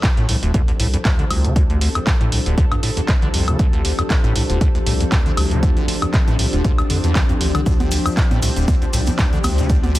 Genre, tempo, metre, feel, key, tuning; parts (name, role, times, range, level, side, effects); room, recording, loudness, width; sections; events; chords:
acid house; 118 BPM; 4/4; swing 55% on 16ths; D minor; A4 = 440 Hz
lush unison pad; sustained chords; 0.0-10.0 s; F3 to A4; -28 LUFS; left 2 dB; chorus, sidechain pumping
liquid acid bass; riff; 0.0-10.0 s; C2 to D3; -21 LUFS; equal; chorus, tape echo
electronic kick drum; drums; 0.0-9.8 s; -18 LUFS; equal
punchy analog drum machine; drums; 0.0-10.0 s; congas, handclaps, hi-hat, woodblock; -24 LUFS; equal
granular cloud pad; texture; 0.4-10.0 s; D4 to D5; -28 LUFS; left 1 dB; built-in reverb, sidechain pumping
saturated sub bass; bass; 0.2-10.0 s; D1 to G2; -22 LUFS; equal; sidechain pumping
maracas; percussion; 7.7-10.0 s; -31 LUFS; left 2 dB
light reverb; dense, heavily limited modern master; -15 LUFS; side -16 dB against mid
0.0-10.0 A section
0.0 Dm7